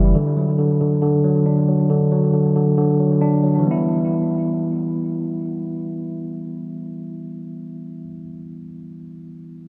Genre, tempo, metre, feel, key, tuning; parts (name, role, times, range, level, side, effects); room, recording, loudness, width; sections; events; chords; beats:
hip hop; 137 BPM; 4/4; half-time; E minor; A4 = 440 Hz
mellow tine electric piano; accompaniment; 0.0-9.7 s; D3 to E4; -21 LUFS; equal; low-pass filter, dub echo
light reverb, small room ambience; echo-heavy mix; -19 LUFS; mono
0.0-3.7 A section; 3.7-7.2 B section
0.1 D; 3.7 Em
| 0.15 0.58 1.02 1.46 | 1.90 2.34 2.77 3.21 | 3.65 4.09 4.53 4.96 | 5.40 5.84 6.28 6.72